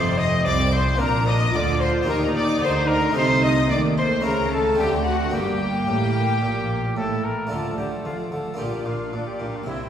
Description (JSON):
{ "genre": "classical, baroque-style concerto movement with solo episodes", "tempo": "111 BPM", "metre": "4/4", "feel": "straight", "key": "G minor", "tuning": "A4 = 439 Hz", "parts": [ { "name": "clear trumpet", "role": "melody", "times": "0.0-9.8 s", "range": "D4 to Eb5", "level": "-26 LUFS", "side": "left 1 dB", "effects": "none" }, { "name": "rich chamber violin section", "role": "melody", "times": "0.0-9.9 s", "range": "E5 to Eb6", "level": "-31 LUFS", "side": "left 4 dB", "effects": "none" }, { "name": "rich chamber violin section", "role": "second line", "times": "0.0-9.9 s", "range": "F#4 to G5", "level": "-28 LUFS", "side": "left 3 dB", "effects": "none" }, { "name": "harpsichord", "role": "accompaniment", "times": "0.0-9.9 s", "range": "C2 to A4", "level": "-28 LUFS", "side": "equal", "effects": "none" }, { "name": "rich symphonic viola section", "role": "accompaniment", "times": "0.0-9.9 s", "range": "F3 to F4", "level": "-28 LUFS", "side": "right 2 dB", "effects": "none" }, { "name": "dark chamber double bass section", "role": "bass", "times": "0.0-9.8 s", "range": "F1 to Eb2", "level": "-27 LUFS", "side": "right 1 dB", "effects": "none" }, { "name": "rich chamber cello section", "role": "bass", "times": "0.0-9.8 s", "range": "C2 to Eb3", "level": "-28 LUFS", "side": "right 2 dB", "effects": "none" } ], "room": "wet concert hall reverb, RT60 1.9 s", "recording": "heard from further back in the room", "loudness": "-19 LUFS", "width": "side -9 dB against mid", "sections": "0.0-7.5 A section; 7.5-9.9 B section", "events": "none", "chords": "0.0 F7; 1.0 Bb; 2.1 Ebmaj7; 3.2 Adim/C; 4.2 Bbmmaj7/Db; 4.8 D7; 5.3 Gm; 7.5 Dm; 8.6 Bb" }